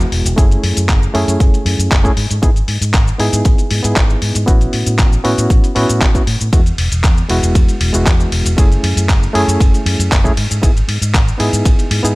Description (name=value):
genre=nu-disco, nu disco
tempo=117 BPM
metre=4/4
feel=straight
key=unclear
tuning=A4 = 440 Hz
part: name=bright reed electric piano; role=accompaniment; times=0.0-12.2 s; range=G#3 to G#4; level=-19 LUFS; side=equal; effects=fast tremolo, sidechain pumping, tape echo
part: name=fingered electric bass with an envelope filter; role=bass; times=0.0-12.1 s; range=E1 to A2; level=-16 LUFS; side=equal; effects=none
part: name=dusty soul sampler-style drum kit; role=drums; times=0.0-12.1 s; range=handclaps, hi-hat, ride cymbal, shaker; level=-20 LUFS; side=left 1 dB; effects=studio reverb
part: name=electronic kick drum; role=drums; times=0.4-11.8 s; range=none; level=-12 LUFS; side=equal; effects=studio reverb
room=digital ambience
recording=none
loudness=-11 LUFS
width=side -22 dB against mid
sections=0.0-12.2 A section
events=none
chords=0.4 F#m7; 2.2 Emaj7/G#; 4.5 A6; 6.5 Eadd9; 8.6 F#m7; 10.4 Emaj7/G#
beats=| 0.38 0.89 1.40 1.91 | 2.43 2.94 3.45 3.96 | 4.48 4.99 5.50 6.02 | 6.53 7.04 7.55 8.07 | 8.58 9.09 9.61 10.12 | 10.63 11.14 11.66